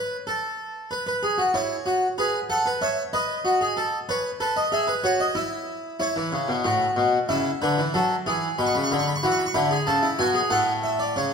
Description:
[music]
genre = classical, baroque-style 3-part fugue for harpsichord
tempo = 94 BPM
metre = 4/4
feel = straight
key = A major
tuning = A4 = 440 Hz
[part]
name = harpsichord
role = solo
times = 0.0-11.3 s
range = A2 to C#6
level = -21 LUFS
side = equal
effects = none
[sound]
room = wet recital hall reverb, RT60 1.6 s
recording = minimal, uncompressed stereo recording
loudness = -21 LUFS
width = side -6 dB against mid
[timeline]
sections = 0.0-11.2 A section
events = none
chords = 0.0 N.C.; 0.9 E; 2.2 E/G#; 3.5 B7/F#; 4.7 E; 6.0 A; 7.3 A/C#; 8.6 E7/B; 9.9 A

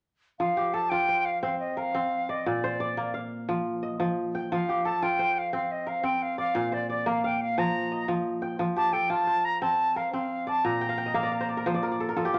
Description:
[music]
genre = west african traditional, West African string and xylophone music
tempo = 117 BPM (dotted quarters)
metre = 12/8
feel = straight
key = F mixolydian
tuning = A4 = 440 Hz
[part]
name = bright reedy silver concert flute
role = melody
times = 0.4-11.7 s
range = D5 to Bb5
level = -30 LUFS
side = equal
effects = none
[part]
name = kora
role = arpeggios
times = 0.4-12.4 s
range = Bb2 to G5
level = -31 LUFS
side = equal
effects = none
[sound]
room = moderate large studio reverb, RT60 1.2 s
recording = none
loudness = -28 LUFS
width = mono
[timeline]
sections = 0.4-12.4 A section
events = kora fill 10.8-12.4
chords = 0.4 F; 2.5 Bb; 4.5 F; 6.6 Bb; 8.6 F; 10.6 Bb

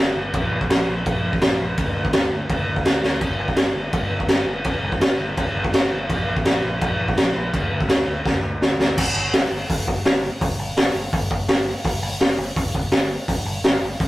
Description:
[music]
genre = punk rock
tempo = 167 BPM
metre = 4/4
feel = straight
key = G minor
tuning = A4 = 440 Hz
[part]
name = growling picked electric bass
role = bass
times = 0.0-14.1 s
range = G1 to D2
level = -28 LUFS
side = equal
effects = overdrive
[part]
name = raw garage drum kit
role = drums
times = 0.3-14.1 s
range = crash cymbal, hi-hat, kick drum, snare drum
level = -19 LUFS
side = equal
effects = none
[sound]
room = little or no reverb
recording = rough rehearsal-room recording, tube saturation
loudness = -18 LUFS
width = side -17 dB against mid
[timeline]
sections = 0.0-9.0 A section; 9.0-14.1 B section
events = drum fill 3.0, 8.3-9.0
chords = none

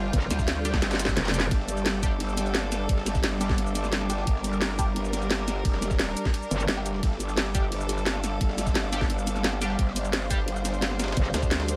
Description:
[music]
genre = dark technical drum and bass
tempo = 174 BPM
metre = 4/4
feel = straight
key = G minor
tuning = A4 = 440 Hz
[part]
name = rich chamber string section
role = sustained chords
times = 0.0-11.8 s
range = G3 to C5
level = -36 LUFS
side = equal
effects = sidechain pumping
[part]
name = growl bass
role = bass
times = 0.0-11.8 s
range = F1 to D2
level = -32 LUFS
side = equal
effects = chorus
[part]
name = ethereal airy pad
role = texture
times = 0.0-11.8 s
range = G3 to G6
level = -38 LUFS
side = equal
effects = ensemble chorus, built-in reverb, phaser, sidechain pumping
[part]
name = metallic wobble bass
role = bass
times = 0.1-1.5, 6.5-6.7, 11.2-11.3 s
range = F1 to G1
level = -30 LUFS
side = equal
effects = chorus, tube saturation
[part]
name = breakbeat sampler-style drum kit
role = drums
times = 0.1-11.8 s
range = ride cymbal, snare drum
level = -41 LUFS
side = equal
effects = none
[part]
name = drum and bass drum kit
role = drums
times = 0.1-11.8 s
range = hi-hat, shaker, snare drum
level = -31 LUFS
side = equal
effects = none
[part]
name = electronic kick drum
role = drums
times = 0.1-11.5 s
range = none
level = -29 LUFS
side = equal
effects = none
[part]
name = band-passed chord stab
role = stabs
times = 0.7-10.4 s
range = G3 to G4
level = -40 LUFS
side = equal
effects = phaser, analog chorus, cassette tape, digital delay
[sound]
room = little or no reverb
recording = none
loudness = -26 LUFS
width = mono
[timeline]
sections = 0.0-11.8 A section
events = drum fill 0.8-1.5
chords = 0.0 G5

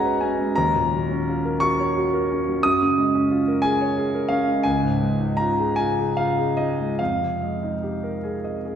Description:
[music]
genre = classical, impressionist solo piano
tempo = 48-59 BPM (dotted quarters)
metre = 6/8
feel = rubato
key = unclear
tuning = A4 = 441 Hz
[part]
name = warm concert grand piano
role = solo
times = 0.0-8.8 s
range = Cb2 to Eb6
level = -20 LUFS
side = equal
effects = none
[sound]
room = wet scoring stage reverb, RT60 1.6 s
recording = heard from further back in the room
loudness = -20 LUFS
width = side -8 dB against mid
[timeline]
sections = 0.0-8.8 A section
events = none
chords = 0.0 Cb69; 0.6 Ebm9; 2.6 Gbmaj9; 4.7 Dbadd9; 7.0 Fm11

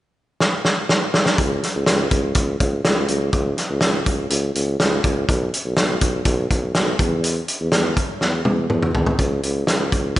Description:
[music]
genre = jangly indie pop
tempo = 123 BPM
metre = 4/4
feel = straight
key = C# minor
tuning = A4 = 440 Hz
[part]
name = loose indie drum kit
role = drums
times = 0.4-10.2 s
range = hi-hat, kick drum, snare drum, toms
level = -19 LUFS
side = equal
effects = none
[part]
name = warm tuba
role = bass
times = 1.4-10.2 s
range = B1 to E2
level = -22 LUFS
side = equal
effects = none
[sound]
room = moderate concert hall reverb, RT60 1.9 s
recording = big arena sound, nothing above 10.7 kHz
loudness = -17 LUFS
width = side -15 dB against mid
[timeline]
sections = 0.0-1.4 A section; 1.4-9.2 B section; 9.2-10.2 C section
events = drum fill 0.4-1.4, 8.2-9.2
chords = none

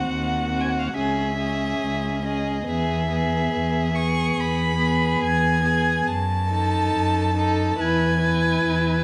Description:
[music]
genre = classical, slow romantic movement for string quartet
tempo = 70 BPM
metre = 4/4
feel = rubato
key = unclear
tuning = A4 = 440 Hz
[part]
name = rich violin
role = melody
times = 0.0-9.0 s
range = D#5 to C#6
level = -28 LUFS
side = equal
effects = none
[part]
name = rich violin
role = second line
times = 0.0-9.0 s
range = Gb4 to B4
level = -30 LUFS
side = equal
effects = none
[part]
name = warm viola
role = accompaniment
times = 0.0-9.0 s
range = B3 to E4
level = -29 LUFS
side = equal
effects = none
[part]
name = rich cello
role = bass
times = 0.1-9.0 s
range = C#2 to F#2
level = -27 LUFS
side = equal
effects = none
[sound]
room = light reverb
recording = close, detailed microphones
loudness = -22 LUFS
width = mono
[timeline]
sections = 0.0-9.0 A section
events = none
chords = 0.0 Cdim/Eb; 0.9 C#m; 2.7 E; 6.1 D#dim/F#; 7.8 E

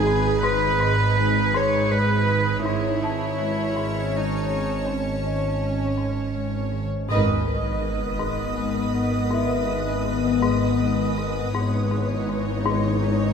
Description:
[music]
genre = cinematic, suspense film score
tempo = 81 BPM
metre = 3/4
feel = straight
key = G# phrygian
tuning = A4 = 439 Hz
[part]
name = warm symphonic violin section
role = melody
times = 0.0-13.3 s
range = B4 to C#5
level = -32 LUFS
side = left 6 dB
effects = none
[part]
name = soft additive organ-like pad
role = sustained chords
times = 0.0-13.3 s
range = B3 to D#6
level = -28 LUFS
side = left 2 dB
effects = ensemble chorus, built-in reverb, phaser
[part]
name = dark chamber cello section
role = bass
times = 0.0-13.3 s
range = G#2 to C#5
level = -27 LUFS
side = right 2 dB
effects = none
[part]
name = rich studio double bass section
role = bass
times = 0.0-13.3 s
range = G#1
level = -28 LUFS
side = right 5 dB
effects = none
[part]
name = organ-like drone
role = drone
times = 0.0-13.3 s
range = G#1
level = -32 LUFS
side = equal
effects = ensemble chorus, built-in reverb, phaser
[part]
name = worn celesta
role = texture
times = 0.0-11.6 s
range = E4 to B5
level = -36 LUFS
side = left 6 dB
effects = none
[part]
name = marimba with hard mallets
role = riff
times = 0.1-13.3 s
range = G#2 to G#3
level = -28 LUFS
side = left 6 dB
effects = none
[part]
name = dark symphonic viola section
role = accompaniment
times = 7.1-13.3 s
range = D#3 to D#5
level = -28 LUFS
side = right 3 dB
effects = none
[part]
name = sub drop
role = sound effects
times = 7.1-9.3 s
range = none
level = -30 LUFS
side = right 1 dB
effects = none
[sound]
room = moderate scoring stage reverb, RT60 1.6 s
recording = none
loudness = -20 LUFS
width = side -6 dB against mid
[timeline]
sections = 0.0-7.1 A section; 7.1-13.3 B section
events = band accent 7.1-7.8; impact 7.1-9.3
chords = 0.0 G#m; 2.7 A/G#; 7.1 G#m; 11.6 C#madd9/G#

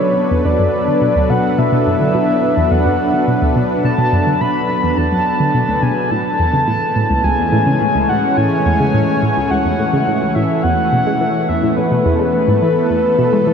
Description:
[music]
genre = ambient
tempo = 106 BPM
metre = 4/4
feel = straight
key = B dorian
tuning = A4 = 440 Hz
[part]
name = soft octave-layered synth lead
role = melody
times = 0.0-13.5 s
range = B4 to B5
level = -17 LUFS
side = left 1 dB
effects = chorus, analog delay
[part]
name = lush unison pad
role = sustained chords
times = 0.0-13.5 s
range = E3 to C#5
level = -17 LUFS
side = equal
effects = chorus
[part]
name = analog pluck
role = riff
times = 0.2-13.5 s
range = C#2 to G#3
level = -18 LUFS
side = equal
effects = chorus, analog delay
[sound]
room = wet huge ambient reverb, RT60 7.9 s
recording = in a vast, echoing space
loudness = -13 LUFS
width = side -7 dB against mid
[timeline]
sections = 0.0-13.5 A section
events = filter sweep on synth arpeggio sound 0.0-13.5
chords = 0.0 Bm7; 6.1 Amaj7; 10.6 Esus4

